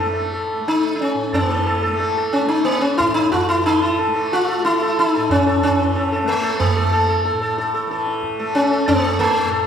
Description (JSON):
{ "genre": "indian classical, Hindustani", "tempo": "91 BPM", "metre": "4/4", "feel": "straight", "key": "A major", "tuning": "A4 = 440 Hz", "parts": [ { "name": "sitar", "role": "melody", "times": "0.0-9.7 s", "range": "A3 to A4", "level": "-18 LUFS", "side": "left 1 dB", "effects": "none" }, { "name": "tanpura", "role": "drone", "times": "0.0-9.7 s", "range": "A2 to A3", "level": "-26 LUFS", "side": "equal", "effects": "none" }, { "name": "tabla", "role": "percussion", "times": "0.7-9.4 s", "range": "none", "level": "-23 LUFS", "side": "right 2 dB", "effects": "none" } ], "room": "wet scoring stage reverb, RT60 1.8 s", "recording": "recorded in a church or concert hall", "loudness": "-16 LUFS", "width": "side -8 dB against mid", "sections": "0.0-1.3 A section; 1.3-9.7 B section", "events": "speeding up 0.0-9.7", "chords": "none" }